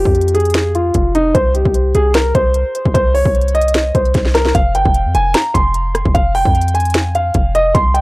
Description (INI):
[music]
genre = hip hop, trap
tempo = 150 BPM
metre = 4/4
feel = half-time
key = F minor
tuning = A4 = 437 Hz
[part]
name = dark concert grand piano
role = melody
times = 0.0-8.0 s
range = Eb4 to C6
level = -14 LUFS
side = equal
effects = tape echo
[part]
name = warm 808-style bass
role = bass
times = 0.0-8.0 s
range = F1 to F2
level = -16 LUFS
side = equal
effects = none
[part]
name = trap drum kit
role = drums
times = 0.1-8.0 s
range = finger snaps, hi-hat, kick drum, rim click, snare drum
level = -17 LUFS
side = equal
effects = none
[sound]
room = little or no reverb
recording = dry, gritty hardware recording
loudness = -11 LUFS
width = side -21 dB against mid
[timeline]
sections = 0.0-4.5 A section; 4.5-8.0 B section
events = drum fill 4.1-4.5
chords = 0.0 Fm; 1.3 N.C.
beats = 0.15 0.55 0.95 | 1.35 1.75 2.15 2.55 | 2.95 3.35 3.75 4.15 | 4.55 4.95 5.35 5.75 | 6.15 6.55 6.95 7.35 | 7.75